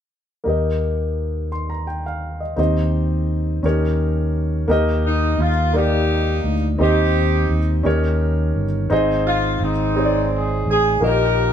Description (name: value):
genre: slow gospel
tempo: 57 BPM (dotted quarters)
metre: 6/8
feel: straight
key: Eb major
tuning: A4 = 440 Hz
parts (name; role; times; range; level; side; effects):
- warm grand piano; accompaniment; 0.4-11.5 s; Ab2 to C6; -22 LUFS; equal; none
- fingered electric bass; bass; 0.5-11.5 s; G1 to Eb2; -20 LUFS; equal; none
- warm horn section; melody; 5.1-11.5 s; Ab3 to Bb4; -20 LUFS; left 1 dB; none
room: moderate stone room reverb, RT60 1.1 s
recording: band playing live in one room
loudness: -17 LUFS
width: side -9 dB against mid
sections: 0.5-4.7 A section; 4.7-11.5 B section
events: none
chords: 0.5 Eb; 2.6 Cm/Eb; 3.6 Eb7; 4.7 Eb; 6.8 Cm/Eb; 7.9 Eb7; 8.9 Ab; 11.0 Eb/Bb